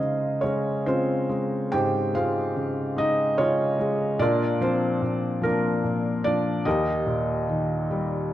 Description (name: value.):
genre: classical, lyrical solo piano.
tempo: 48 BPM (dotted quarters).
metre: 6/8.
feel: rubato.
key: unclear.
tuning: A4 = 440 Hz.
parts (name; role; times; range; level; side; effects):
felt-muted upright piano; solo; 0.0-8.3 s; Eb2 to G5; -22 LUFS; equal; none.
room: moderate scoring stage reverb, RT60 1.6 s.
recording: dark, warm production.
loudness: -22 LUFS.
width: side -13 dB against mid.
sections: 0.0-8.3 A section.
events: felt piano fill 7.9-8.3.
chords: 0.0 Dbmaj7; 4.2 Bb; 6.7 Eb.